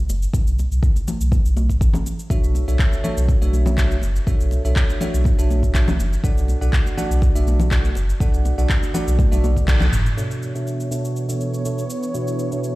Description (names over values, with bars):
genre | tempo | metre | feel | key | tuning
afro house | 122 BPM | 4/4 | swing 53% on 16ths | B minor | A4 = 442 Hz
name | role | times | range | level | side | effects
warm sub bass | bass | 0.0-10.1 s | F#1 to B1 | -19 LUFS | equal | tube saturation, sidechain pumping
afro-pop drum kit | drums | 0.1-12.7 s | cabasa, handclaps, toms | -29 LUFS | equal | studio reverb
congas | percussion | 0.1-10.0 s | none | -27 LUFS | left 1 dB | none
electronic kick drum | drums | 0.3-9.8 s | none | -19 LUFS | equal | studio reverb
bell-like tine electric piano | stabs | 2.3-12.8 s | B2 to F#5 | -26 LUFS | right 1 dB | wide subtle chorus, sidechain pumping, low-pass filter, digital delay
warm analog pad | sustained chords | 10.2-12.8 s | E3 to C#5 | -28 LUFS | equal | chorus, sidechain pumping
room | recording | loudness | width
digital ambience | played on a big sound system in a bare room, large studio reverb | -17 LUFS | side -19 dB against mid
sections
0.0-10.2 A section; 10.2-12.8 B section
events
drum fill 9.2-10.2; band accent 9.7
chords
0.0 N.C.; 2.3 Bm11; 6.2 D; 10.2 Bm11